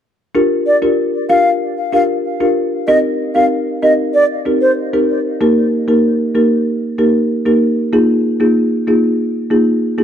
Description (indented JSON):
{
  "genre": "dancehall",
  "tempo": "95 BPM",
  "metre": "4/4",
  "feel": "straight",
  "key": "G phrygian",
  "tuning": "A4 = 440 Hz",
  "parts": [
    { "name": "folk marimba with soft mallets", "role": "accompaniment", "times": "0.3-10.0 s", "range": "Bb3 to Bb4", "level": "-13 LUFS", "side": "equal", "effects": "none" },
    { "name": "baroque flute", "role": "melody", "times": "0.7-4.7 s", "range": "C5 to F5", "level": "-15 LUFS", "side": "equal", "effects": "ping-pong delay" }
  ],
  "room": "moderate plate reverb, RT60 3.0 s",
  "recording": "dark, warm production",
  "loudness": "-12 LUFS",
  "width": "side -9 dB against mid",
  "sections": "0.4-10.0 A section",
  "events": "none",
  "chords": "0.4 Gm7; 2.9 Cm7; 5.4 Eb; 7.9 Bb7sus4"
}